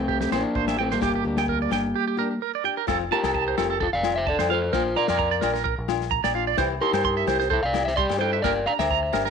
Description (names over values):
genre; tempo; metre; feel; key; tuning
highlife guitar band; 129 BPM; 4/4; swing 54% on 16ths; F major; A4 = 442 Hz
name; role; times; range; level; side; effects
electric guitar at the edge of break-up; melody; 0.0-9.2 s; G3 to F5; -25 LUFS; left 1 dB; none
deep dub fingered electric bass; bass; 0.0-9.3 s; F1 to G2; -32 LUFS; equal; none
clean electric guitar; arpeggios; 0.1-9.3 s; G4 to C6; -26 LUFS; right 16 dB; harmonic tremolo, slapback echo
warm soul drum kit; drums; 0.1-9.3 s; kick drum, snare drum; -32 LUFS; left 4 dB; none
flamenco guitar; accompaniment; 0.3-9.3 s; E3 to G4; -32 LUFS; left 14 dB; none
agogo bells; percussion; 0.3-9.3 s; none; -31 LUFS; left 16 dB; none
room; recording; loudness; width
small room ambience; 1960s-style stereo with parts hard left and right; -21 LUFS; side -6 dB against mid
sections
0.0-2.9 A section; 2.9-9.3 B section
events
break 1.9-2.9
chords
0.0 C; 1.0 Gm; 2.9 F; 4.7 Bb; 6.6 C; 8.4 Gm